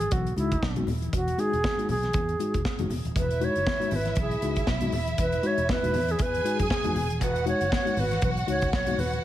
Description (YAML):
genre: disco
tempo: 118 BPM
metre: 4/4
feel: swing 56% on 16ths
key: E major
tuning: A4 = 440 Hz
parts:
  - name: bright alto flute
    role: melody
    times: 0.0-9.2 s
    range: E4 to C#5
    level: -29 LUFS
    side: right 1 dB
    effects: tape echo
  - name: mellow tine electric piano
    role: accompaniment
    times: 0.0-9.2 s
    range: E3 to F#4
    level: -32 LUFS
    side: left 4 dB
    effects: medium stereo tremolo
  - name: fingered electric bass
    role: bass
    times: 0.0-9.2 s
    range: D#1 to F#2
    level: -30 LUFS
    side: right 1 dB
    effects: none
  - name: modern studio drum kit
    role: drums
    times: 0.0-9.2 s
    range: hi-hat, kick drum, snare drum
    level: -30 LUFS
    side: equal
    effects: gated reverb
  - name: congas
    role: percussion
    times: 0.4-9.1 s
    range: none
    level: -36 LUFS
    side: left 3 dB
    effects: none
  - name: warm studio violin section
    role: second line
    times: 3.2-9.2 s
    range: E4 to G#5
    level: -32 LUFS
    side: right 1 dB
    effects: none
room: small room reverb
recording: none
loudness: -24 LUFS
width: side -13 dB against mid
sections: 0.0-9.2 A section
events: none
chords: 0.0 Emaj7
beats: 0.12 0.62 | 1.13 1.64 2.15 2.65 | 3.16 3.66 4.17 4.68 | 5.18 5.69 6.20 6.70 | 7.21 7.72 8.23 8.73 | 9.24